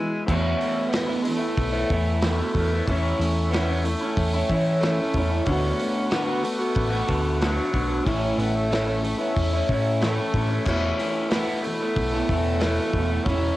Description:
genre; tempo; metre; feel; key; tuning
folk rock and heartland rock; 92 BPM; 4/4; straight; unclear; A4 = 440 Hz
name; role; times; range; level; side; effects
clear tenor saxophone; melody; 0.0-13.6 s; F#3 to C#4; -30 LUFS; equal; cassette tape
picked steel-string acoustic guitar; accompaniment; 0.0-13.6 s; E2 to F#4; -31 LUFS; left 2 dB; cassette tape
accordion; sustained chords; 0.0-13.6 s; A4 to E6; -36 LUFS; equal; light tremolo tuning, cassette tape
electric guitar through a small old amp; riff; 0.0-13.6 s; E2 to G#4; -26 LUFS; right 1 dB; phaser, cassette tape
hollow-body short-scale picked electric bass; bass; 0.3-13.5 s; E1 to E3; -25 LUFS; equal; none
natural country drum kit; drums; 0.3-13.4 s; crash cymbal, hi-hat, kick drum, snare drum; -29 LUFS; equal; cassette tape
room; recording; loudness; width
light reverb; home recording on cassette; -21 LUFS; side -16 dB against mid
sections
0.3-13.6 A section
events
break 0.0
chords
0.3 Esus4; 2.9 A/E; 5.5 D6; 8.1 A; 10.7 Esus4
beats
| 0.28 0.92 1.57 2.22 | 2.87 3.52 4.17 4.81 | 5.46 6.11 6.76 7.41 | 8.06 8.71 9.35 10.00 | 10.65 11.30 11.95 12.60 | 13.25

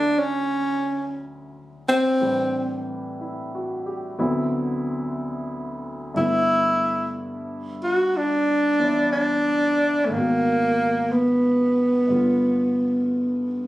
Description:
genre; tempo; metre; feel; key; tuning
jazz ballad; 61 BPM; 4/4; swing 67% on 8ths; D major; A4 = 440 Hz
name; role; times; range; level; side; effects
mellow tenor saxophone; melody; 0.0-13.7 s; A3 to F#4; -19 LUFS; equal; none
warm grand piano; accompaniment; 0.0-13.7 s; D2 to C#5; -28 LUFS; left 1 dB; none
room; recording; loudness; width
light reverb; recorded on a phone in the room, studio ambience, compression; -20 LUFS; side -16 dB against mid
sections
0.0-13.7 A section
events
none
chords
0.0 Dmaj7; 2.2 Am11; 4.2 D13; 6.1 G6; 10.1 G#m9; 12.1 G9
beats
0.23 1.22 | 2.21 3.20 4.18 5.16 | 6.14 7.13 8.11 9.10 | 10.09 11.08 12.09 13.11

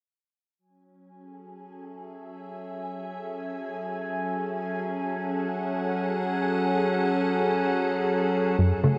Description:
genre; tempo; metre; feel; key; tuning
ambient, sequencer-driven space music; free time; none; none; F# minor; A4 = 438 Hz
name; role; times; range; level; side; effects
evolving wavetable pad; sustained chords; 1.8-9.0 s; F#3 to F#5; -29 LUFS; equal; chorus, built-in reverb
bubbling stepped-filter texture; texture; 1.3-8.6 s; G#5; -40 LUFS; equal; chorus, built-in reverb
warbly dusty pluck; arpeggios; 8.6-9.0 s; C#3 to F#3; -26 LUFS; equal; chorus, cassette tape
plucky analog bass; riff; 8.6-9.0 s; F#2 to A3; -25 LUFS; equal; tape echo
room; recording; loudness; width
wet huge ambient reverb, RT60 7.4 s; none; -27 LUFS; mono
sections
0.6-8.6 A section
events
fade-in on ambient pad 0.6-8.6; fade-in on synth texture 0.6-8.6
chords
0.6 F#m7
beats
free time

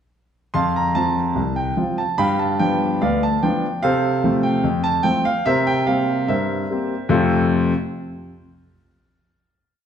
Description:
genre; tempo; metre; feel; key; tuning
ragtime piano; 73 BPM; 2/4; straight; F major; A4 = 441 Hz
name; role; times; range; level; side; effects
warm concert grand piano; solo; 0.5-7.7 s; C2 to C6; -17 LUFS; equal; none
room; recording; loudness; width
wet recital hall reverb, RT60 1.4 s; recorded in a church or concert hall; -17 LUFS; side -8 dB against mid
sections
0.5-7.1 A section; 7.1-8.8 final chord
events
none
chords
0.5 F; 2.2 G7; 3.8 F/C; 5.5 C7; 7.1 F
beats
| 0.54 1.37 | 2.19 3.01 | 3.82 4.64 | 5.46 6.28 | 7.11

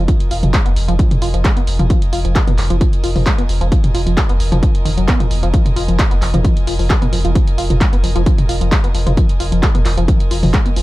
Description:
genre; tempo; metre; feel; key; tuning
driving peak-time techno; 132 BPM; 4/4; straight; F minor; A4 = 440 Hz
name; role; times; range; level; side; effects
tight sequenced synth; riff; 0.0-10.8 s; Eb3 to F4; -22 LUFS; equal; chorus, sidechain pumping, ping-pong delay
saturated sub bass; bass; 0.0-10.8 s; F1; -17 LUFS; equal; tube saturation, sidechain pumping, low-pass filter
rich chamber string section; texture; 0.0-10.8 s; F4 to Ab5; -30 LUFS; right 2 dB; sidechain pumping
electronic kick drum; drums; 0.1-10.6 s; none; -14 LUFS; equal; none
punchy analog drum machine; drums; 0.1-10.8 s; handclaps, hi-hat, toms; -21 LUFS; equal; none
room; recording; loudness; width
digital ambience; dark, warm production; -12 LUFS; side -18 dB against mid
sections
0.0-10.8 A section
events
fade-in on string section 0.0-10.8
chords
0.0 Fm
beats
| 0.08 0.54 0.99 1.45 | 1.90 2.35 2.81 3.26 | 3.72 4.17 4.63 5.08 | 5.54 5.99 6.45 6.90 | 7.36 7.81 8.26 8.72 | 9.17 9.63 10.08 10.54

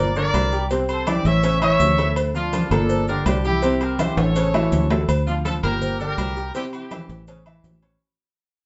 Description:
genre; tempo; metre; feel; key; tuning
latin, salsa; 164 BPM; 4/4; straight; D minor; A4 = 440 Hz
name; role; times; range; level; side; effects
bright horn section; melody; 0.0-7.2 s; D4 to E5; -26 LUFS; equal; none
clear grand piano; accompaniment; 0.0-8.0 s; Bb2 to C#6; -28 LUFS; equal; none
fingered electric bass; bass; 0.0-8.0 s; G1 to D2; -25 LUFS; equal; none
congas; percussion; 0.2-7.8 s; none; -32 LUFS; equal; none
maracas; percussion; 0.2-8.0 s; none; -47 LUFS; equal; none
cowbell; percussion; 0.3-8.0 s; none; -32 LUFS; equal; none
timbales and agogo bells; percussion; 0.3-8.0 s; none; -32 LUFS; equal; none
room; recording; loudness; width
wet studio reverb, RT60 0.5 s; heard from further back in the room, nothing above 7.8 kHz; -21 LUFS; mono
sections
0.0-5.1 A section; 5.1-8.0 B section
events
drum fill 4.0-5.1; fade-out 5.1-8.0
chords
0.0 Gm; 0.7 C; 1.4 A; 2.2 Dm; 2.9 Gm; 3.6 C; 4.4 A; 5.1 Dm; 5.8 Gm; 6.5 C; 7.3 A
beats
0.34 | 0.71 1.07 1.44 1.80 | 2.17 2.53 2.90 3.26 | 3.63 3.99 4.36 4.72 | 5.09 5.45 5.82 6.18 | 6.55 6.91 7.28 7.64

